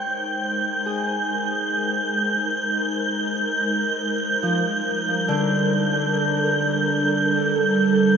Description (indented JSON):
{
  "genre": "ambient",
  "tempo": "free time",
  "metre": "none",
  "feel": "none",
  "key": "unclear",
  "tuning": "A4 = 441 Hz",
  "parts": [
    { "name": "ethereal airy pad", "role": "sustained chords", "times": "0.0-8.2 s", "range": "G3 to C5", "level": "-23 LUFS", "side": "right 2 dB", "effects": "ensemble chorus, built-in reverb" },
    { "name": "Celtic harp", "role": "arpeggios", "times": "0.0-8.2 s", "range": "D3 to G5", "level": "-28 LUFS", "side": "left 2 dB", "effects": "analog delay, shimmer reverb" },
    { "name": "wind-like tuned noise texture", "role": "texture", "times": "0.0-8.2 s", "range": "G6", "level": "-23 LUFS", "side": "right 1 dB", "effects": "built-in reverb, analog chorus, shimmer reverb" }
  ],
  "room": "wet huge ambient reverb, RT60 8.9 s",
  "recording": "dreamy mix soaked in reverb",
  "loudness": "-20 LUFS",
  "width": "side -7 dB against mid",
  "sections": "0.0-8.2 A section",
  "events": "fade-in on ambient pad 0.0-8.2; fade-in on harp 0.0-8.2",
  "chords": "0.0 Abmaj7; 4.5 Gm"
}